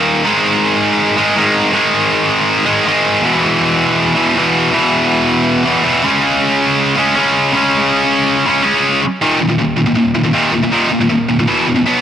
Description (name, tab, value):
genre	metal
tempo	160 BPM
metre	4/4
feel	straight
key	unclear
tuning	A4 = 438 Hz
part	heavy high-gain guitar	solo	0.0-12.0 s	Eb2 to Db4	-11 LUFS	equal	distortion, cassette tape, tape echo
room	digital ambience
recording	home recording on cassette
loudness	-11 LUFS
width	side -9 dB against mid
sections	0.0-9.2 A section; 9.2-12.0 B section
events	none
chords	0.2 Ab5; 3.2 E5; 6.0 Db5; 9.2 Eb5; 11.5 E5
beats	| 0.24 0.61 0.99 1.36 | 1.73 2.11 2.48 2.85 | 3.23 3.60 3.97 4.35 | 4.72 5.09 5.47 5.84 | 6.21 6.59 6.96 7.34 | 7.71 8.09 8.46 8.84 | 9.21 9.59 9.97 10.35 | 10.72 11.10 11.48 11.86